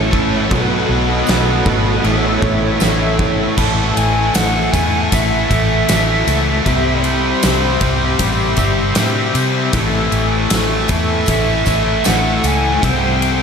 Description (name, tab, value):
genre	rock, shoegaze and dream pop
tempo	78 BPM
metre	4/4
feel	straight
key	unclear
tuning	A4 = 438 Hz
part	phased analog pad	sustained chords	0.0-13.4 s	G4 to C#6	-22 LUFS	equal	phaser, chorus
part	electric guitar through a small old amp	riff	0.0-3.6 s	B2 to C#5	-24 LUFS	right 8 dB	reverse reverb
part	thick fuzz guitar	riff	0.0-13.4 s	A2 to C4	-21 LUFS	left 7 dB	distortion, wide subtle chorus
part	tight distorted guitar	riff	0.0-13.4 s	A2 to C4	-20 LUFS	right 1 dB	distortion
part	vintage muted fingered electric bass	bass	0.0-13.4 s	G1 to C3	-20 LUFS	equal	none
part	huge arena drum kit	drums	0.1-13.4 s	crash cymbal, kick drum, ride cymbal, snare drum	-20 LUFS	equal	none
part	tambourine	percussion	1.3-13.3 s	none	-32 LUFS	right 12 dB	none
part	breathy mellow jazz flute	melody	3.6-13.4 s	C5 to A5	-21 LUFS	right 2 dB	diffuse ambient delay
room	wet huge ambient reverb, RT60 8.2 s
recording	dreamy mix soaked in reverb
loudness	-13 LUFS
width	side -6 dB against mid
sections	0.0-3.6 A section; 3.6-13.4 B section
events	none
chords	0.0 A; 0.5 B7; 2.0 Aadd9; 3.6 A; 6.7 Cmaj7; 9.7 Amaj7; 12.8 C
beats	| 0.51 1.28 2.04 2.81 | 3.58 4.34 5.11 5.88 | 6.65 7.42 8.20 8.97 | 9.74 10.51 11.29 12.06 | 12.83